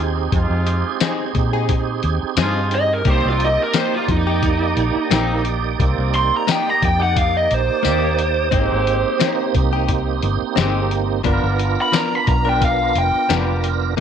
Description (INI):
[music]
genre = straight-eighth soul blues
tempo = 88 BPM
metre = 4/4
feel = swing 56% on 16ths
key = C minor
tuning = A4 = 440 Hz
[part]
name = tonewheel organ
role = accompaniment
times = 0.0-14.0 s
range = Bb3 to D5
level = -23 LUFS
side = right 13 dB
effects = overdrive, chorus vibrato, slow rotary speaker
[part]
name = vintage muted fingered electric bass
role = bass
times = 0.0-13.9 s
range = F1 to Bb2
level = -21 LUFS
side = equal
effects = none
[part]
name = clear horn section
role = sustained chords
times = 0.3-13.7 s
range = F3 to D5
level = -28 LUFS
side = equal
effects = none
[part]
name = lo-fi sampler-style drum kit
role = drums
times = 0.3-14.0 s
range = hi-hat, kick drum, snare drum, tambourine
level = -21 LUFS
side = left 3 dB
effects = none
[part]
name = direct-recorded clean electric guitar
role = stabs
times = 1.0-14.0 s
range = F3 to A#4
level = -26 LUFS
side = left 13 dB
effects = spring reverb, tape echo
[part]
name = lead guitar through a small cranked amp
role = melody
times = 2.8-13.3 s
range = Eb4 to C6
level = -20 LUFS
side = right 1 dB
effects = overdrive
[sound]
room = light reverb, digital ambience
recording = 1960s-style stereo with parts hard left and right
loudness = -16 LUFS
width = side -8 dB against mid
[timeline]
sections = 0.0-14.0 A section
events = lead electric guitar solo 0.0-14.0; kick and snare drop out 7.8-8.5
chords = 0.0 Fm7; 3.1 Cm7; 8.5 Abmaj7; 11.3 G7#9